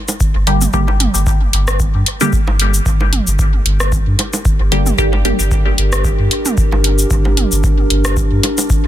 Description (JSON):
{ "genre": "dub techno", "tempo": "113 BPM", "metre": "4/4", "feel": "swing 55% on 16ths", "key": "G minor", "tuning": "A4 = 440 Hz", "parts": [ { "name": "deep house drum kit", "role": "drums", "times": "0.1-8.8 s", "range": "hi-hat, rim click, shaker", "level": "-20 LUFS", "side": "left 1 dB", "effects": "dub echo" }, { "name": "electronic bongos and toms", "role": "percussion", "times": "0.1-8.7 s", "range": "none", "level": "-24 LUFS", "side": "right 3 dB", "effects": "overdrive, sidechain pumping on toms, sidechain pumping on perc, dub echo" }, { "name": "electronic kick drum", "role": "drums", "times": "0.2-8.8 s", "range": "none", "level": "-16 LUFS", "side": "equal", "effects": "none" }, { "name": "warm sub bass", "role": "bass", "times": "0.3-8.9 s", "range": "G1 to G2", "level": "-16 LUFS", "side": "equal", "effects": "sidechain pumping" }, { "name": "filtered dub chord stab", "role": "stabs", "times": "0.5-5.4 s", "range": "D3 to G4", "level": "-20 LUFS", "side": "equal", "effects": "phaser, sidechain pumping, dub echo" }, { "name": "dark analog pad", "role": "sustained chords", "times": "2.9-8.9 s", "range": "D4 to Bb4", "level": "-22 LUFS", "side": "equal", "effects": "wide subtle chorus, sidechain pumping" } ], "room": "digital ambience", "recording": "dense, heavily limited modern master", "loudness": "-12 LUFS", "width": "side -12 dB against mid", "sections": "0.0-8.9 A section", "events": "none", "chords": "0.0 Gm", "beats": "0.21 | 0.74 1.27 1.80 2.33 | 2.86 3.39 3.92 4.45 | 4.98 5.51 6.05 6.58 | 7.11 7.64 8.17 8.70" }